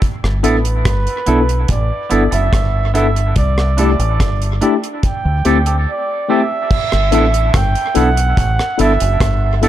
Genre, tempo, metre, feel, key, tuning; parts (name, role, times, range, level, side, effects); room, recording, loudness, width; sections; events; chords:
lovers rock reggae; 72 BPM; 4/4; straight; G major; A4 = 440 Hz
deep reggae drum kit; drums; 0.0-9.7 s; crash cymbal, hi-hat, kick drum, rim click; -19 LUFS; equal; dub echo
deep dub fingered electric bass; bass; 0.2-9.7 s; F#1 to D2; -16 LUFS; equal
tine electric piano; accompaniment; 0.4-9.7 s; A3 to A4; -18 LUFS; left 3 dB; medium stereo tremolo
twangy electric guitar; stabs; 0.4-9.7 s; B3 to A4; -23 LUFS; right 2 dB; dub echo
warm flugelhorn; melody; 0.5-9.7 s; B4 to G5; -20 LUFS; right 4 dB; tape echo
light reverb, studio reverb; dark, warm production; -13 LUFS; side -12 dB against mid
0.0-6.7 A section; 6.7-9.7 B section
break 5.9-6.7
0.0 G69; 3.4 C69; 5.0 D7sus4; 6.7 G69